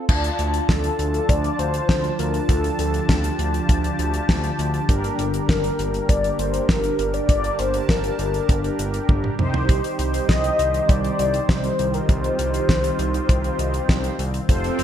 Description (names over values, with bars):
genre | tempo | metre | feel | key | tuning
synth-pop | 100 BPM | 4/4 | straight | unclear | A4 = 440 Hz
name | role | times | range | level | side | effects
mellow synth brass | accompaniment | 0.0-14.8 s | D4 to A5 | -26 LUFS | right 1 dB | chorus, phaser
phased analog pad | sustained chords | 0.1-14.8 s | D3 to A5 | -30 LUFS | equal | phaser, chorus
smooth gliding synth bass | bass | 0.1-14.8 s | F1 to D2 | -26 LUFS | equal | none
damped 70s drum kit | drums | 0.1-14.8 s | crash cymbal, hi-hat, kick drum, snare drum, toms | -21 LUFS | equal | gated reverb
warm velvety synth lead | melody | 0.7-13.9 s | A4 to Eb5 | -25 LUFS | left 3 dB | chorus, digital delay
swell | sound effects | 14.7-14.8 s | none | -26 LUFS | right 4 dB | none
room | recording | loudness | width
light reverb, small room ambience | bright 1980s-style digital production | -19 LUFS | side -10 dB against mid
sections
0.1-14.8 A section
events
drum fill 9.1-9.7; swell 14.7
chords
0.1 Dm; 4.9 Gm; 9.4 Cm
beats
| 0.09 0.69 1.29 1.89 | 2.49 3.09 3.69 4.29 | 4.89 5.49 6.09 6.69 | 7.29 7.89 8.49 9.09 | 9.69 10.29 10.89 11.49 | 12.09 12.69 13.29 13.89 | 14.49